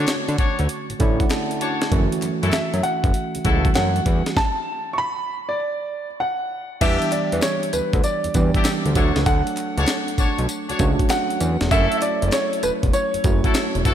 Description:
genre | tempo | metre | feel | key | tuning
R&B, new jack swing | 98 BPM | 4/4 | swing 66% on 16ths | E dorian | A4 = 440 Hz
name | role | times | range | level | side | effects
warm grand piano | melody | 0.0-13.9 s | B4 to C#6 | -25 LUFS | equal | tube saturation, slapback echo, ping-pong delay
tine electric piano | accompaniment | 0.0-13.9 s | D3 to A5 | -25 LUFS | right 5 dB | overdrive, slapback echo
warm horn section | stabs | 0.0-13.9 s | D4 to C#5 | -28 LUFS | left 3 dB | slapback echo, ping-pong delay
fat analog bass | bass | 0.0-13.9 s | E1 to D3 | -22 LUFS | equal | none
breakbeat sampler-style drum kit | drums | 0.1-13.9 s | crash cymbal, hi-hat, kick drum, snare drum, tambourine | -22 LUFS | equal | none
group handclap | percussion | 0.1-13.7 s | none | -39 LUFS | left 5 dB | none
room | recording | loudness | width
moderate concert hall reverb, RT60 2.5 s | big arena sound | -18 LUFS | side -10 dB against mid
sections
0.0-6.8 A section; 6.8-13.9 B section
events
tine electric piano fill 0.7-1.9; stop 4.4-6.8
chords
0.0 Dmaj7; 1.9 F#m7; 4.4 N.C.; 6.8 Em7; 9.0 Dmaj7; 11.7 F#m7

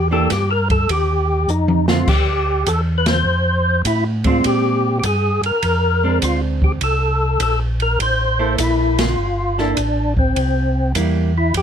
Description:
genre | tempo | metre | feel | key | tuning
soul jazz organ trio | 101 BPM | 4/4 | swing 67% on 8ths | C mixolydian | A4 = 440 Hz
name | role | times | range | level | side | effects
percussive tonewheel organ | melody | 0.0-11.6 s | C4 to C5 | -19 LUFS | left 2 dB | slow rotary speaker, overdrive, chorus vibrato
mellow tonewheel organ | bass | 0.0-11.6 s | G1 to Bb2 | -19 LUFS | equal | chorus vibrato, slow rotary speaker
hollow-body jazz guitar | accompaniment | 0.1-11.3 s | D3 to A4 | -22 LUFS | right 5 dB | none
open jazz drum kit | drums | 0.3-11.6 s | crash cymbal, hi-hat, kick drum, ride cymbal, snare drum, toms | -23 LUFS | equal | none
room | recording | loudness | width
light reverb | close, detailed microphones | -15 LUFS | side -8 dB against mid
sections
0.0-11.5 A section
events
drum fill 1.5-2.1; band accent 3.0, 8.9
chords
0.0 Em7b5; 0.9 Ebadd9; 2.1 Dm7; 4.4 Bb9; 6.8 C13; 10.4 C7

